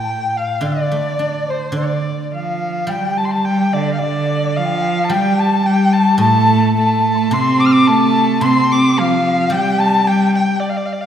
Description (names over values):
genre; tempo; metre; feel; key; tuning
chinese traditional, Chinese chamber ensemble; 108 BPM; 2/4; rubato; D yu mode; A4 = 442 Hz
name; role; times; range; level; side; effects
warm erhu; melody; 0.0-11.1 s; C5 to F6; -19 LUFS; equal; none
breathy xiao; second line; 0.0-10.6 s; C5 to D6; -21 LUFS; left 3 dB; none
guzheng; accompaniment; 0.0-11.1 s; A2 to D4; -21 LUFS; equal; none
rich cello; second line; 2.3-10.6 s; D3 to C4; -16 LUFS; right 2 dB; none
room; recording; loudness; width
wet scoring stage reverb, RT60 1.5 s; heard from further back in the room; -13 LUFS; side -9 dB against mid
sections
0.0-2.9 A section; 2.9-11.1 B section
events
none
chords
none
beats
0.07 | 0.63 1.19 | 1.75 2.32 | 2.90 3.46 | 4.02 4.57 | 5.11 5.65 | 6.20 6.76 | 7.33 7.89 | 8.44 8.99 | 9.53 10.07 | 10.62